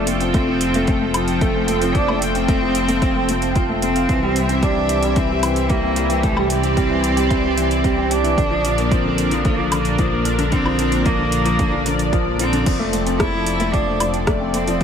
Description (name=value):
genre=piano and strings electronica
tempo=112 BPM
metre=4/4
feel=straight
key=F major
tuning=A4 = 440 Hz
part: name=rich cello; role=melody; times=0.0-14.8 s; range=A3 to E4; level=-22 LUFS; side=right 2 dB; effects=none
part: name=lush unison pad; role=sustained chords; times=0.0-14.8 s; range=F3 to G5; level=-23 LUFS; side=right 1 dB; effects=chorus, phaser
part: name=felt-muted upright piano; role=riff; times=0.0-14.8 s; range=D3 to F5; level=-22 LUFS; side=left 3 dB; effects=none
part: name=dark detuned saw bass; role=bass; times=0.0-14.8 s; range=F1 to C2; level=-25 LUFS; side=equal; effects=sidechain pumping
part: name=deep house drum kit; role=drums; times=0.1-14.8 s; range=crash cymbal, hi-hat, rim click, woodblock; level=-26 LUFS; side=equal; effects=overdrive
part: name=electronic kick drum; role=drums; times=0.3-14.8 s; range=none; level=-21 LUFS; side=equal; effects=overdrive
room=light reverb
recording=none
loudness=-16 LUFS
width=side -7 dB against mid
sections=0.0-14.8 A section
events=none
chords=0.0 F; 4.1 C; 8.4 Bb; 12.7 F